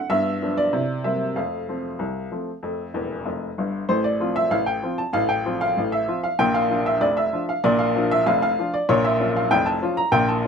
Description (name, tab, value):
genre	ragtime piano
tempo	96 BPM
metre	2/4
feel	straight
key	F major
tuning	A4 = 439 Hz
part	clear upright piano	solo	0.0-10.5 s	E1 to Bb5	-20 LUFS	equal	none
room	light reverb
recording	minimal, uncompressed stereo recording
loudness	-20 LUFS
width	side -6 dB against mid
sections	0.0-3.9 A section; 3.9-10.5 B section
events	upright piano fill 2.9-3.9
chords	0.1 G7; 0.7 C7; 1.4 F; 3.9 F/A; 6.4 Bb; 8.9 Bbm